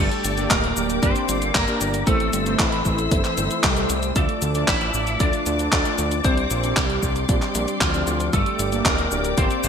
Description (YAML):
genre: italo disco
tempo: 115 BPM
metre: 4/4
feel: straight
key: D minor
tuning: A4 = 440 Hz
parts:
  - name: lightly driven lead guitar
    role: melody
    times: 0.0-9.7 s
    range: E3 to E5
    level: -25 LUFS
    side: equal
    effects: ensemble chorus, ping-pong delay
  - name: dark chamber string section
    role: sustained chords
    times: 0.0-9.7 s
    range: F3 to E6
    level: -29 LUFS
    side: left 2 dB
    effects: none
  - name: analog synth brass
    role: stabs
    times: 0.0-9.7 s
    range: G3 to D5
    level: -27 LUFS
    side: right 1 dB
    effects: chorus
  - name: fat analog bass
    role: bass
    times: 0.0-9.7 s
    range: D1 to D2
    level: -26 LUFS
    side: equal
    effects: tube saturation
  - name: gated 80s digital drum machine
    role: drums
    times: 0.1-9.7 s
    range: cabasa, handclaps, hi-hat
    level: -24 LUFS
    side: equal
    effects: gated reverb
  - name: electronic kick drum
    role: drums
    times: 0.5-9.5 s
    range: none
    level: -23 LUFS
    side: equal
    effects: overdrive
room: light reverb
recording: bright 1980s-style digital production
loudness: -18 LUFS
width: side -7 dB against mid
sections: 0.0-9.7 A section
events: none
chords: 0.0 Gm; 2.1 Am; 4.2 Dm; 6.2 Csus2; 8.3 Gm